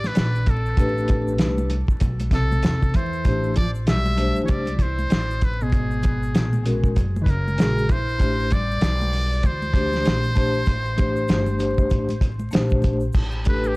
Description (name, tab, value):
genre	hip hop, jazz-hop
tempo	97 BPM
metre	4/4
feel	swing 61% on 16ths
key	A minor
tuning	A4 = 440 Hz
part	trumpet with metal mute	melody	0.0-13.8 s	G4 to E5	-28 LUFS	equal	plate reverb, analog delay
part	mellow electric guitar	second line	0.0-12.5 s	B2 to D4	-29 LUFS	equal	none
part	upright bass	bass	0.0-13.7 s	F#1 to E2	-24 LUFS	equal	none
part	cloth-damped thuddy drum kit	drums	0.0-13.6 s	crash cymbal, hi-hat, kick drum, snare drum	-22 LUFS	equal	vintage 12-bit sampler grit
part	congas and egg shaker	percussion	0.0-13.8 s	none	-34 LUFS	equal	none
part	vibraphone with soft mallets	accompaniment	0.8-13.8 s	G#3 to C5	-25 LUFS	left 1 dB	plate reverb
room	light reverb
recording	dry, gritty hardware recording, transformer saturation, vinyl crackle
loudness	-19 LUFS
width	side -23 dB against mid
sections	0.0-3.3 A section; 3.3-13.1 B section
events	none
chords	0.0 Am11; 5.7 G#m11; 8.2 Am11; 13.1 A9sus4